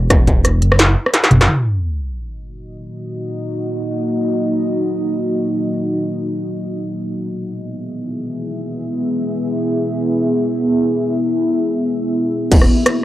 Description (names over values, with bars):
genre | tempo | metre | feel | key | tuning
half-time drum and bass | free time | none | none | Eb phrygian | A4 = 440 Hz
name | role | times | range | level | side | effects
dark detuned saw bass | bass | 0.0-1.5, 12.5-12.7 s | Eb1 to Gb1 | -15 LUFS | equal | tube saturation
electronic kick drum | drums | 0.1-0.4, 12.5-12.6 s | none | -12 LUFS | equal | distortion, cassette tape
industrial drum kit | drums | 0.1-1.5, 12.5-12.9 s | crash cymbal, hi-hat, rim click, snare drum, toms | -14 LUFS | equal | cassette tape
deep dark ambient pad | sustained chords | 2.7-13.0 s | Bb3 to E5 | -18 LUFS | equal | chorus, built-in reverb, sidechain pumping, cassette tape
sub drop | sound effects | 1.5-2.9 s | none | -20 LUFS | equal | none
room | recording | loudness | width
moderate small room reverb, RT60 0.6 s | home recording on cassette | -15 LUFS | side -14 dB against mid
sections
0.0-1.5 A section; 1.5-12.5 B section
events
drop 0.0-1.5; drum fill 1.2; impact 1.5-2.9; filter sweep on ambient pad 1.5-12.5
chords
0.0 E5; 1.5 Ebm; 7.0 E; 12.5 Ebm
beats
free time